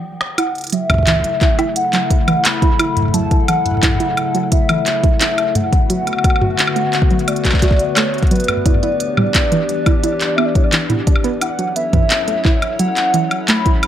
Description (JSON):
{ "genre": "IDM", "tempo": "87 BPM", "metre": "4/4", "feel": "straight", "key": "F# phrygian", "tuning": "A4 = 440 Hz", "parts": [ { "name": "organic electronic drum kit", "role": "drums", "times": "0.2-13.9 s", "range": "handclaps, hi-hat, snare drum, toms, woodblock", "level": "-19 LUFS", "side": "equal", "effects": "none" }, { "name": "warbly nostalgic lead", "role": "melody", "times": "0.4-13.9 s", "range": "B4 to B5", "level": "-20 LUFS", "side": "equal", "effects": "wide subtle chorus, dub echo" }, { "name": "warbly tape-like pad", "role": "sustained chords", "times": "0.7-13.9 s", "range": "C#3 to C#5", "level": "-23 LUFS", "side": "left 3 dB", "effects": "chorus, built-in reverb" }, { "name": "warbly dusty pluck", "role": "arpeggios", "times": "0.4-13.7 s", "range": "E3 to F#4", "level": "-21 LUFS", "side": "right 4 dB", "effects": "chorus, tape echo" }, { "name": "electronic kick drum", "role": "drums", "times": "0.9-13.8 s", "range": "none", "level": "-15 LUFS", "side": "equal", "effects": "none" } ], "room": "moderate spring reverb, RT60 2.5 s", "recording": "echo-heavy mix", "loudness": "-13 LUFS", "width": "side -10 dB against mid", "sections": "0.4-13.9 A section", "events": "break 0.0-0.4; drum fill 0.0-0.4", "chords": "0.4 F#m7; 5.6 Bm7; 8.7 Em7; 11.4 F#m7", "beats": "| 0.38 1.07 1.76 2.45 | 3.14 3.83 4.52 5.21 | 5.90 6.59 7.28 7.97 | 8.66 9.35 10.04 10.73 | 11.41 12.11 12.79 13.48" }